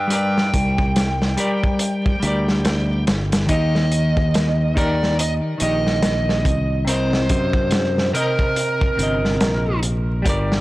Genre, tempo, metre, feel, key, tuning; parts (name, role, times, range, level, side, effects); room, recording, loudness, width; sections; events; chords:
trip hop; 71 BPM; 4/4; swing 60% on 16ths; A4 = 443 Hz
overdriven slide guitar; melody; 0.0-9.8 s; Bb4 to G5; -24 LUFS; right 1 dB; tape echo
semi-hollow electric guitar; accompaniment; 0.0-10.6 s; C3 to Eb5; -22 LUFS; left 1 dB; tremolo
modern bright fingered electric bass; bass; 0.0-10.6 s; G1 to G2; -22 LUFS; equal; tube saturation
crunchy breakbeat drum kit; drums; 0.1-10.6 s; hi-hat, kick drum, snare drum; -21 LUFS; equal
small room reverb; blown-out, overdriven recording, vinyl crackle, overdrive; -17 LUFS; side -18 dB against mid
0.0-10.6 A section
0.0 Gm; 3.5 Eb; 6.9 Cm7